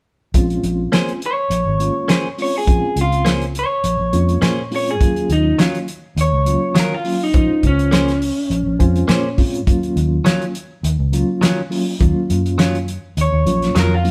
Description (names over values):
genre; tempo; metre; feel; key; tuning
straight-eighth soul blues; 103 BPM; 4/4; swing 54% on 16ths; Bb minor; A4 = 440 Hz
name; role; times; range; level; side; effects
reed electric piano; accompaniment; 0.3-14.1 s; Gb3 to Ab5; -24 LUFS; equal; fast tremolo
vintage muted fingered electric bass; bass; 0.3-14.1 s; Ab1 to Bb2; -21 LUFS; equal; none
warm soul drum kit; drums; 0.3-14.1 s; hi-hat, kick drum, snare drum; -21 LUFS; equal; none
direct-recorded clean electric guitar; stabs; 0.9-13.9 s; Eb3 to C5; -24 LUFS; equal; none
electric guitar through a small old amp; melody; 1.3-9.4, 13.2-14.1 s; Db4 to Db5; -22 LUFS; equal; none
room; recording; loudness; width
light reverb; band playing live in one room; -17 LUFS; mono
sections
0.3-14.1 A section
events
reed electric piano fill 8.5-9.7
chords
0.3 Bbm9; 5.0 Ebm9; 7.3 Bbm9; 9.7 Ebm9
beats
| 0.34 0.92 1.51 2.09 | 2.67 3.26 3.84 4.42 | 5.01 5.59 6.18 6.76 | 7.34 7.93 8.51 9.09 | 9.68 10.26 10.84 11.42 | 12.01 12.59 13.17 13.76